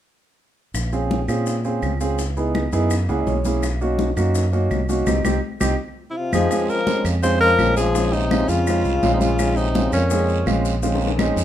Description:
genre	Afro-Cuban jazz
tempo	167 BPM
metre	4/4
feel	straight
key	Bb minor from 6.5 s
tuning	A4 = 438 Hz
part	modern bright fingered electric bass	bass	0.7-11.4 s	Bb1 to Bb2	-22 LUFS	equal	none
part	bongos	percussion	0.7-11.3 s	none	-32 LUFS	left 7 dB	none
part	claves	percussion	0.7-11.4 s	none	-33 LUFS	right 1 dB	none
part	maracas	percussion	0.7-11.4 s	none	-36 LUFS	left 6 dB	none
part	congas	percussion	0.8-11.4 s	none	-28 LUFS	left 2 dB	none
part	warm concert grand piano	accompaniment	0.9-11.4 s	Ab3 to Gb5	-23 LUFS	right 2 dB	none
part	breathy alto saxophone	melody	6.1-10.6 s	Db4 to C5	-21 LUFS	equal	none
part	warm trombone	second line	6.1-10.6 s	Bb2 to Ab3	-25 LUFS	left 6 dB	none
part	guiro	percussion	6.5-11.4 s	none	-36 LUFS	right 8 dB	none
room	light reverb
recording	minimal, uncompressed stereo recording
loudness	-18 LUFS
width	side -11 dB against mid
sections	0.8-6.5 A section; 6.5-11.4 B section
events	grand piano fill 2.9-3.6, 5.8-6.5; band accent 5.1-6.5; drum fill 5.8-6.5, 10.8-11.4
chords	0.8 Bbm9; 2.2 Dbm7; 2.9 Gb7; 3.6 Bmaj7; 5.1 Cm; 5.8 F5; 6.5 Bbm9

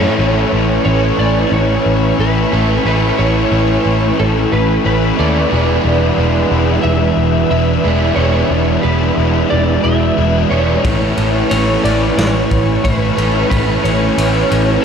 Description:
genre	rock, shoegaze and dream pop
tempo	90 BPM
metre	4/4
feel	straight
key	A major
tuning	A4 = 436 Hz
part	lightly driven lead guitar	melody	0.0-14.8 s	A4 to E5	-20 LUFS	right 1 dB	ensemble chorus, diffuse ambient delay
part	airy breathy pad	sustained chords	0.0-14.8 s	A4 to C#6	-22 LUFS	right 2 dB	chorus
part	overdriven electric guitar	riff	0.0-14.8 s	E2 to E4	-18 LUFS	left 10 dB	analog chorus
part	overdriven electric guitar	riff	0.0-14.8 s	E3 to D5	-18 LUFS	right 10 dB	reverse reverb
part	vintage muted picked electric bass	bass	0.0-14.8 s	E1 to D#2	-17 LUFS	equal	none
part	raw garage drum kit	drums	10.8-14.7 s	kick drum, ride cymbal, snare drum	-21 LUFS	equal	none
room	moderate lush hall reverb, RT60 2.0 s, small room ambience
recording	dreamy mix soaked in reverb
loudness	-11 LUFS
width	side -7 dB against mid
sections	0.2-14.8 A section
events	none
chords	0.2 Amaj9; 5.5 E5; 10.8 Amaj9

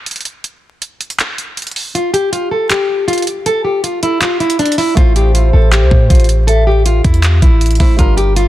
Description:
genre	hip hop, trap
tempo	159 BPM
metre	4/4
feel	half-time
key	unclear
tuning	A4 = 443 Hz
part	trap drum kit	drums	0.1-8.5 s	handclaps, hi-hat, kick drum	-14 LUFS	equal	none
part	nylon-string guitar	melody	1.9-8.5 s	D4 to A4	-15 LUFS	left 1 dB	low-pass filter, digital delay
part	hollow clarinet-like synth lead	second line	5.0-6.8 s	C5 to E5	-22 LUFS	left 1 dB	chorus, digital delay
part	dark concert grand piano	accompaniment	5.0-8.5 s	G3 to C5	-25 LUFS	right 3 dB	low-pass filter
part	clean 808-style bass	bass	5.0-8.5 s	G1 to A2	-11 LUFS	equal	none
room	digital ambience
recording	dense, heavily limited modern master, vinyl crackle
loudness	-10 LUFS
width	side -14 dB against mid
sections	0.0-8.5 A section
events	break 0.0-5.0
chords	0.0 N.C.; 5.0 Am

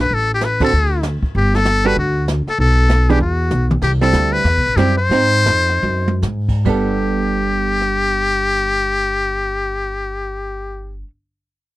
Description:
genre	jazz, small-group swing and bop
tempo	135-194 BPM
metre	4/4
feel	swing 62% on 8ths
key	G major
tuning	A4 = 441 Hz
part	trumpet with metal mute	melody	0.0-11.0 s	F#4 to C5	-18 LUFS	left 3 dB	none
part	upright bass	bass	0.0-11.0 s	G1 to Ab2	-18 LUFS	equal	none
part	jazz brush drum kit	drums	0.1-7.9 s	brushed snare drum, crash cymbal, hi-hat, kick drum, ride cymbal, rim click, snare drum, toms	-23 LUFS	equal	none
part	hollow-body jazz guitar	accompaniment	0.6-11.1 s	D3 to A4	-20 LUFS	right 5 dB	none
room	little or no reverb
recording	dry, close 1970s-style studio recording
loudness	-14 LUFS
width	side -17 dB against mid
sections	0.0-3.8 A section; 3.8-6.7 B section; 6.7-10.2 C section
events	band accent 0.6; drum fill 3.5-3.8, 5.8-6.2; slowing down 3.8-6.7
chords	0.1 Am; 0.7 D5; 1.3 Gmaj7sus2; 2.6 Bm7; 3.2 E5; 3.8 Am7; 5.1 Ab7; 6.7 Gadd9

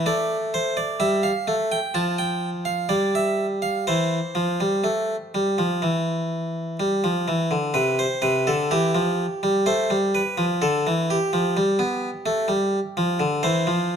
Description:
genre	classical, baroque-style two-part invention for harpsichord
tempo	63 BPM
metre	4/4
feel	straight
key	C major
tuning	A4 = 440 Hz
part	harpsichord	solo	0.0-14.0 s	C3 to A5	-20 LUFS	equal	none
room	moderate recital hall reverb, RT60 1.4 s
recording	close, detailed microphones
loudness	-20 LUFS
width	side -7 dB against mid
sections	0.0-7.8 A section; 7.8-14.0 B section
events	none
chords	0.1 A5; 2.0 F; 2.9 G5; 3.9 C/E; 7.8 C; 9.7 F; 11.6 G; 13.4 C/E

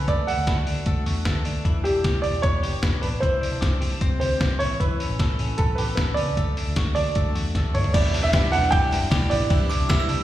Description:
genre	jangly indie pop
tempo	153 BPM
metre	4/4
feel	straight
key	D major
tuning	A4 = 442 Hz
part	warm upright piano	melody	0.0-9.9 s	G4 to G5	-26 LUFS	right 2 dB	slapback echo, digital delay
part	twelve-string electric guitar	arpeggios	0.0-10.2 s	E3 to A4	-31 LUFS	left 5 dB	slapback echo
part	vintage muted picked electric bass	bass	0.0-10.2 s	E1 to E2	-26 LUFS	equal	none
part	lo-fi sampler-style drum kit	drums	0.1-10.2 s	crash cymbal, hi-hat, kick drum, ride cymbal, snare drum, toms	-24 LUFS	equal	none
part	picked plugged-in twelve-string acoustic guitar	accompaniment	7.9-10.2 s	E2 to E4	-29 LUFS	right 3 dB	slapback echo
part	glockenspiel with brass mallets	second line	9.7-10.2 s	D6 to E6	-28 LUFS	right 4 dB	slapback echo
room	little or no reverb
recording	live gig heard through the venue's PA, recital hall reverb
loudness	-20 LUFS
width	side -13 dB against mid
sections	0.0-7.9 A section; 7.9-10.2 B section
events	drum fill 7.6-7.9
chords	0.1 D; 1.7 Em7; 3.2 Cadd9; 4.6 Aadd9; 6.4 D; 7.9 Em7; 9.5 Cadd9

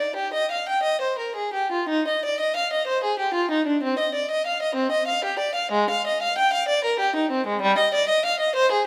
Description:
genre	classical, baroque-style suite movement for unaccompanied violin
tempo	63 BPM (dotted quarters)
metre	6/8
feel	uneven beats, rubato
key	Eb major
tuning	A4 = 440 Hz
part	rich violin	solo	0.0-8.9 s	G3 to G5	-23 LUFS	equal	none
room	moderate recital hall reverb, RT60 1.3 s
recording	none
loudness	-23 LUFS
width	mono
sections	0.0-1.9 A section; 1.9-8.9 B section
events	none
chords	none

